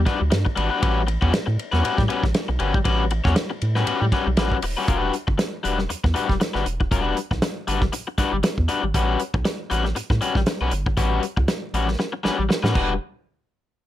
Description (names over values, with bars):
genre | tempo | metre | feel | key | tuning
funk | 118 BPM | 4/4 | swing 56% on 16ths | E dorian | A4 = 440 Hz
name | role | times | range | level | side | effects
round analog bass | bass | 0.0-13.0 s | D#1 to A2 | -23 LUFS | right 1 dB | none
crunchy overdriven guitar | accompaniment | 0.1-12.9 s | G3 to C#5 | -24 LUFS | left 5 dB | tube saturation
warm soul drum kit | drums | 0.1-12.9 s | crash cymbal, hi-hat, kick drum, ride cymbal, snare drum | -24 LUFS | right 1 dB | none
room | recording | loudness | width
little or no reverb | none | -20 LUFS | side -13 dB against mid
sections
0.0-4.9 A section; 4.9-13.0 B section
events
drum fill 12.0-13.0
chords
0.0 Em9 (rootless); 0.8 A13; 4.9 Em9; 8.9 A13; 12.8 Em9; 13.0 N.C.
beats
0.32 | 0.82 1.33 1.84 2.35 | 2.85 3.36 3.87 4.38 | 4.88 5.39 5.90 6.41 | 6.91 7.42 7.93 8.44 | 8.94 9.45 9.96 10.47 | 10.97 11.48 11.99 12.50